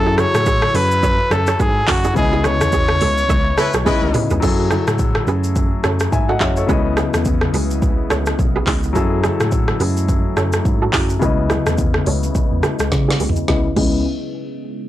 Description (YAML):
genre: afrobeats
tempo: 106 BPM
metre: 4/4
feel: swing 58% on 16ths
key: C# minor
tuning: A4 = 439 Hz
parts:
  - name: warm trumpet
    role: melody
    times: 0.0-4.1 s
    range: F#4 to C#5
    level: -19 LUFS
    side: equal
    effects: digital delay, plate reverb
  - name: warm grand piano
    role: accompaniment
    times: 0.0-14.0 s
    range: C#3 to G#5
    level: -23 LUFS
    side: left 5 dB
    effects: low-pass filter, plate reverb
  - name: mellow tine electric piano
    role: bass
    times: 0.0-14.0 s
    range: B1 to C#3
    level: -20 LUFS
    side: equal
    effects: none
  - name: kora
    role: riff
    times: 0.1-13.9 s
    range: E4 to E5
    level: -24 LUFS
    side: right 6 dB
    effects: low-pass filter, digital delay
  - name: afro-pop drum kit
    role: drums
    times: 0.2-13.9 s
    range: crash cymbal, handclaps, hi-hat, kick drum, rim click, shaker, snare drum, toms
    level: -19 LUFS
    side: equal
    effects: vintage 12-bit sampler grit
  - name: congas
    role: percussion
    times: 0.2-14.0 s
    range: none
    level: -30 LUFS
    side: right 2 dB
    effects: none
  - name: warm horn section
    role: second line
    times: 3.6-4.2 s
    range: G#3 to B4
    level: -21 LUFS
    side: left 2 dB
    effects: plate reverb
  - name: deep dark ambient pad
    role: sustained chords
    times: 5.2-13.7 s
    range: C#3 to G#5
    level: -28 LUFS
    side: right 1 dB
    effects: chorus, built-in reverb, low-pass filter, plate reverb
room: light reverb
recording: blown-out, overdriven recording, overdrive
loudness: -14 LUFS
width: side -13 dB against mid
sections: 0.0-4.4 A section; 4.4-13.5 B section; 13.5-14.9 C section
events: band accent 2.2-4.4; drum fill 3.9-4.4, 12.9-13.5; filter sweep 4.4-13.5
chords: 0.0 F#m9; 2.2 C#m9; 4.4 F#m9; 6.7 C#m9; 9.0 F#m9; 11.2 C#m9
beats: 0.46 1.03 1.59 | 2.16 2.73 3.29 3.86 | 4.42 4.99 5.56 6.12 | 6.69 7.26 7.82 8.39 | 8.95 9.52 10.09 10.65 | 11.22 11.78 12.35 12.92 | 13.48